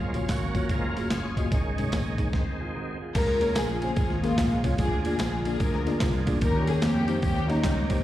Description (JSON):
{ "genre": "uptempo gospel", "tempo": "147 BPM", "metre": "4/4", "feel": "swing 65% on 8ths", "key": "Db major", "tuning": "A4 = 440 Hz", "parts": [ { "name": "bright tonewheel organ", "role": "sustained chords", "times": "0.0-8.0 s", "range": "Eb3 to Bb4", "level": "-34 LUFS", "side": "right 1 dB", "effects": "overdrive, chorus vibrato, slow rotary speaker" }, { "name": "dark French horn section", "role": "sustained chords", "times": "0.0-2.3 s", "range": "Eb3 to F5", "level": "-40 LUFS", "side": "equal", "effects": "none" }, { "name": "fingered electric bass", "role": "bass", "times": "0.0-8.0 s", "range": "Gb1 to F2", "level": "-29 LUFS", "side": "equal", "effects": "none" }, { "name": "bell-like tine electric piano", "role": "accompaniment", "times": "0.1-8.0 s", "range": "Ab2 to Eb5", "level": "-33 LUFS", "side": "left 2 dB", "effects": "medium stereo tremolo, slapback echo" }, { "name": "boom bap sampler-style drum kit", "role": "drums", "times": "0.1-8.0 s", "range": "crash cymbal, hi-hat, kick drum, ride cymbal, snare drum", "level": "-28 LUFS", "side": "equal", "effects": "none" }, { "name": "tambourine and handclaps", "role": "percussion", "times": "0.2-8.0 s", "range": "none", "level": "-45 LUFS", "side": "right 1 dB", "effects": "none" }, { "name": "mellow electric guitar", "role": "second line", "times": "2.6-3.4 s", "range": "F4 to Bb4", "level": "-40 LUFS", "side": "right 4 dB", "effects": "slapback echo" }, { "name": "dark studio string section", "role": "melody", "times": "3.1-8.0 s", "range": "G3 to Bb4", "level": "-28 LUFS", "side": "left 1 dB", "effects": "slapback echo" } ], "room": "little or no reverb", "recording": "live gig heard through the venue's PA, recital hall reverb", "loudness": "-24 LUFS", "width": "side -13 dB against mid", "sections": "0.0-3.2 A section; 3.2-8.0 B section", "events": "tonewheel organ solo 0.0-3.2; stop 2.3-3.2", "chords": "0.0 Gbmaj7; 1.5 Absus4; 2.3 Ab; 3.2 Db6; 4.8 Bb7; 6.4 Eb7" }